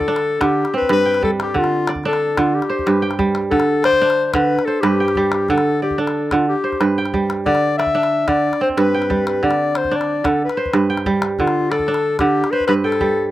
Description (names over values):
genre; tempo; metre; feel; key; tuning
west african traditional, West African string and xylophone music; 122 BPM (dotted quarters); 12/8; straight; unclear; A4 = 441 Hz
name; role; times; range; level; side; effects
clear clarinet; melody; 0.0-13.3 s; F4 to E5; -18 LUFS; left 4 dB; slapback echo
kora; arpeggios; 0.0-13.3 s; G2 to G5; -18 LUFS; right 3 dB; none
calabash; percussion; 0.0-13.1 s; none; -27 LUFS; left 2 dB; none
room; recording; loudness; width
light reverb; recorded outdoors, with no room sound; -15 LUFS; side -14 dB against mid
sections
0.0-13.3 A section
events
none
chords
0.0 N.C.; 0.6 G; 1.6 N.C.; 2.5 G; 3.5 N.C.; 4.5 G; 5.5 N.C.; 6.5 G; 7.5 N.C.; 8.4 G; 9.4 N.C.; 10.4 G; 11.4 N.C.; 12.4 G